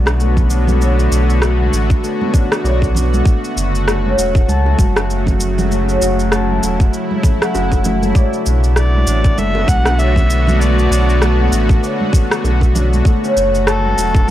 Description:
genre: organic downtempo.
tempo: 98 BPM.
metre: 4/4.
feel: swing 58% on 16ths.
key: B minor.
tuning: A4 = 437 Hz.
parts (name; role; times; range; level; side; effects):
bowed-like drone; sustained chords; 0.0-14.3 s; C#3 to F#4; -20 LUFS; equal; built-in reverb, sidechain pumping.
concert harp; arpeggios; 0.0-14.3 s; A3 to A5; -20 LUFS; left 2 dB; tape echo.
warm sub bass; bass; 0.0-14.3 s; E1 to C#2; -15 LUFS; equal; none.
electronic rim click and cabasa; drums; 0.1-14.3 s; none; -21 LUFS; equal; small room ambience.
bongos and congas; percussion; 0.1-14.3 s; none; -24 LUFS; right 3 dB; none.
electronic kick drum; drums; 0.4-14.3 s; none; -13 LUFS; equal; small room ambience.
warm kamancheh; melody; 8.8-14.3 s; A4 to F#5; -21 LUFS; left 1 dB; tape echo.
room: little or no reverb.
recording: dry, gritty hardware recording.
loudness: -12 LUFS.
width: side -12 dB against mid.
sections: 0.0-14.3 A section.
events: none.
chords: 0.0 Bm7; 3.3 F#m; 8.2 Bm7; 13.1 F#m.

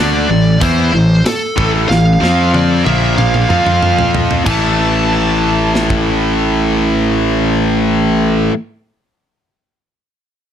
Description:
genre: heavy metal.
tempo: 94 BPM.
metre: 4/4.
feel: straight.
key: A phrygian.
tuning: A4 = 441 Hz.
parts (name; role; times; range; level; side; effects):
high-gain lead guitar; melody; 0.0-7.8 s; A4 to A5; -18 LUFS; right 2 dB; distortion.
high-gain distorted guitar; riff; 0.0-8.5 s; A2 to F4; -13 LUFS; equal; distortion.
fuzz fingered electric bass; bass; 0.0-8.5 s; A1 to F2; -17 LUFS; equal; overdrive.
tight metal drum kit; drums; 0.6-6.1 s; crash cymbal, hi-hat, kick drum, snare drum, toms; -18 LUFS; right 1 dB; none.
room: light reverb.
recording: dark, warm production.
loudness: -11 LUFS.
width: side -9 dB against mid.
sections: 0.0-4.5 A section; 4.5-7.0 B section.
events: drum fill 1.9-4.5.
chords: 0.0 Am; 2.2 F5; 2.9 Bb5; 3.5 F5; 4.5 A5.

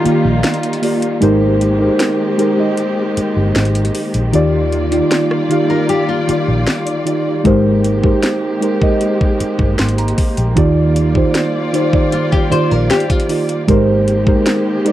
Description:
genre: contemporary R&B.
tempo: 77 BPM.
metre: 4/4.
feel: straight.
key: Eb major.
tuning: A4 = 440 Hz.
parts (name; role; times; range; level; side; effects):
muted felt-like synth keys; accompaniment; 0.0-14.9 s; Eb3 to C6; -15 LUFS; right 1 dB; chorus.
dark studio string section; sustained chords; 0.0-14.9 s; Eb3 to D5; -21 LUFS; equal; none.
nylon-string guitar; arpeggios; 0.0-1.0, 5.7-7.2, 12.1-13.7 s; F4 to C5; -20 LUFS; left 4 dB; tape echo.
vintage muted fingered electric bass; bass; 0.1-14.3 s; G1 to Eb2; -17 LUFS; equal; none.
trap drum kit; drums; 0.1-14.9 s; hi-hat, kick drum, rim click, snare drum; -17 LUFS; equal; cassette tape.
room: light reverb.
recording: home recording on cassette.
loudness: -12 LUFS.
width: side -13 dB against mid.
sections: 0.0-14.9 A section.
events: break 0.0-7.5.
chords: 0.0 Ebmaj9; 1.2 Abmaj9; 4.3 Ebmaj9; 7.5 Abmaj9; 10.6 Ebmaj9; 13.7 Abmaj9.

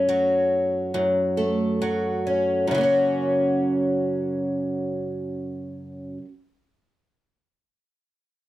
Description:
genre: pop.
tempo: 65-72 BPM.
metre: 4/4.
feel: swing 55% on 16ths.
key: unclear.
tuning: A4 = 441 Hz.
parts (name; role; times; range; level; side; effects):
picked twelve-string acoustic guitar; accompaniment; 0.0-6.3 s; F#2 to F#4; -21 LUFS; equal; none.
room: light reverb.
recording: dark, warm production.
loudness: -21 LUFS.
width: side -15 dB against mid.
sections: 0.0-2.7 A section; 2.7-6.4 B section.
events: slowing down 0.0-2.7.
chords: 0.0 F#m; 2.7 F#.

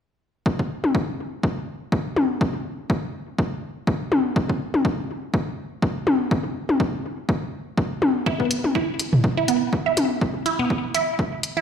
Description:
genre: minimal techno.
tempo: 123 BPM.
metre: 4/4.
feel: swing 55% on 16ths.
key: unclear.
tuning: A4 = 440 Hz.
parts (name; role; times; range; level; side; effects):
electronic kick drum; drums; 0.5-11.3 s; none; -23 LUFS; equal; high-pass filter on kick.
electronic toms; percussion; 0.8-10.1 s; none; -23 LUFS; left 2 dB; tape echo.
resonant blip pluck; riff; 8.3-11.6 s; B3 to E4; -23 LUFS; right 4 dB; phaser, sidechain pumping, ping-pong delay.
electronic hi-hat; drums; 8.5-11.5 s; none; -29 LUFS; left 1 dB; none.
room: moderate plate reverb, RT60 1.8 s, digital ambience.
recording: played on a big sound system in a bare room, large studio reverb.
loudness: -21 LUFS.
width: side -8 dB against mid.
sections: 0.5-11.6 A section.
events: none.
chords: none.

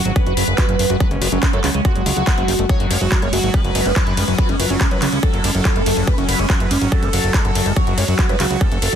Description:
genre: psychedelic trance.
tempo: 142 BPM.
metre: 4/4.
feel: straight.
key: F# minor.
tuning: A4 = 440 Hz.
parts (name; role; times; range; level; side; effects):
swarming drone; sustained chords; 0.0-9.0 s; F#3 to F#4; -27 LUFS; equal; built-in reverb, sidechain pumping.
overdriven synth lead; melody; 0.1-9.0 s; C#4 to C#5; -22 LUFS; right 2 dB; phaser, sidechain pumping, ping-pong delay.
screaming distorted acid line; riff; 0.1-9.0 s; F#3 to F#4; -25 LUFS; moving between left 9 dB and right 7 dB; distortion, chorus, auto-pan, sidechain pumping, ping-pong delay.
fat analog bass; bass; 0.1-9.0 s; F#1 to F#2; -21 LUFS; equal; tube saturation.
drum and bass drum kit; drums; 0.1-9.0 s; handclaps, hi-hat, ride cymbal; -23 LUFS; equal; overdrive, studio reverb.
electronic kick drum; drums; 0.2-8.7 s; none; -18 LUFS; equal; studio reverb.
metallic wobble bass; second line; 3.9-4.8 s; B3 to E#4; -35 LUFS; left 3 dB; none.
room: little or no reverb.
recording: dense, heavily limited modern master.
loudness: -15 LUFS.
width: side -9 dB against mid.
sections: 0.0-9.0 A section.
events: none.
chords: 0.0 F#5.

